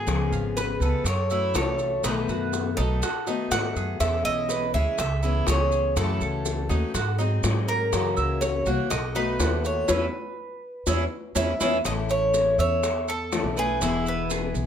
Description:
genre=latin, Cuban son and guajira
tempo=122 BPM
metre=4/4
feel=straight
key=E major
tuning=A4 = 440 Hz
part: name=Cuban tres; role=melody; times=0.0-14.5 s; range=G#4 to F#5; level=-28 LUFS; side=right 1 dB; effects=none
part: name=picked steel-string acoustic guitar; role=accompaniment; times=0.0-14.7 s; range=B2 to G#4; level=-30 LUFS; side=left 6 dB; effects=none
part: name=Cuban tres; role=arpeggios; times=0.0-14.7 s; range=C#4 to E#5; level=-30 LUFS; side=right 2 dB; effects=none
part: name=upright bass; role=bass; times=0.0-14.7 s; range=E1 to G#2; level=-27 LUFS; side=right 1 dB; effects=none
part: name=bongos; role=percussion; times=0.1-14.6 s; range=none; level=-32 LUFS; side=left 5 dB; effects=none
part: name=maracas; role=percussion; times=0.1-14.7 s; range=none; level=-35 LUFS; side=right 6 dB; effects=none
room=light reverb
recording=close, detailed microphones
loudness=-22 LUFS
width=side -8 dB against mid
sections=0.0-11.9 A section; 11.9-14.7 B section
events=band accent 9.9-11.9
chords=0.1 C#7; 1.1 F#m7; 2.0 B7; 4.0 E6; 5.0 C#m7; 6.0 F#m7; 7.0 G#7; 7.9 F#7; 8.9 B7; 9.9 E6; 11.9 A; 13.8 E

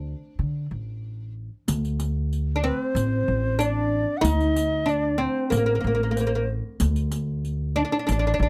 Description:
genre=Arabic maqam ensemble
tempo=94 BPM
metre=4/4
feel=straight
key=D maqam hijaz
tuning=A4 = 440 Hz
part: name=oud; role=melody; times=0.0-8.5 s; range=Bb3 to Eb4+25c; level=-27 LUFS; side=equal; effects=none
part: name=upright bass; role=bass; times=0.0-8.5 s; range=A1 to D3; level=-28 LUFS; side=equal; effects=none
part: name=riq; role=percussion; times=1.7-8.2 s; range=none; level=-34 LUFS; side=equal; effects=none
part: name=breathy bright low ney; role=second line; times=2.6-8.5 s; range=Bb4 to F#5+31c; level=-31 LUFS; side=equal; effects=none
room=little or no reverb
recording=close, detailed microphones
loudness=-25 LUFS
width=mono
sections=0.0-1.7 A section; 1.7-8.5 B section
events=none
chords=none

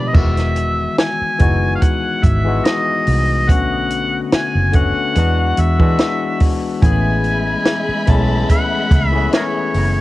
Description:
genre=lush 1970s-style soul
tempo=72 BPM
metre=4/4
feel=swing 54% on 16ths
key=E major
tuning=A4 = 439 Hz
part: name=overdriven harmonica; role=melody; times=0.0-10.0 s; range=G#4 to A5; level=-20 LUFS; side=equal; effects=tape echo
part: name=warm studio string section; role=second line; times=0.0-0.1, 6.8-10.0 s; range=G#3 to B5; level=-24 LUFS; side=equal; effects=cassette tape
part: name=barky tine electric piano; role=accompaniment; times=0.0-10.0 s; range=C#3 to G#4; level=-21 LUFS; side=left 5 dB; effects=overdrive, cassette tape
part: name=vintage muted fingered electric bass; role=bass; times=0.1-10.0 s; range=E1 to E3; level=-17 LUFS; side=right 1 dB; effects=none
part: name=compact cocktail drum kit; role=drums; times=0.1-10.0 s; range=crash cymbal, hi-hat, kick drum, snare drum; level=-15 LUFS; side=right 1 dB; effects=none
room=little or no reverb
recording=home recording on cassette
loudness=-14 LUFS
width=side -17 dB against mid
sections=0.1-10.0 A section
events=none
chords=0.1 Emaj7; 3.5 Bm7; 5.2 E7; 6.8 Amaj9

